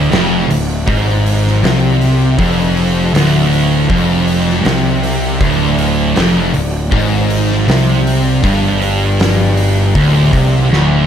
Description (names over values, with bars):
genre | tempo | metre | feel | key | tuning
stoner and doom metal | 79 BPM | 4/4 | straight | D minor | A4 = 439 Hz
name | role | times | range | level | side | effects
thick fuzz guitar | riff | 0.0-11.1 s | D2 to C3 | -17 LUFS | left 7 dB | distortion
thick fuzz guitar | riff | 0.0-11.1 s | D2 to C3 | -15 LUFS | right 6 dB | distortion
tight distorted guitar | riff | 0.0-11.1 s | D2 to C3 | -19 LUFS | left 1 dB | distortion
fuzz picked electric bass | bass | 0.0-11.1 s | D1 to C2 | -18 LUFS | left 1 dB | overdrive
oversized low-tuned drum kit | drums | 0.1-10.9 s | hi-hat, kick drum, snare drum | -18 LUFS | left 1 dB | none
room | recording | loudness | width
light reverb | none | -10 LUFS | side -9 dB against mid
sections
0.0-11.1 A section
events
drum fill 10.7-11.1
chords
0.0 Dm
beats
0.12 0.88 1.63 | 2.39 3.14 3.90 4.65 | 5.41 6.17 6.92 7.68 | 8.44 9.19 9.95 10.71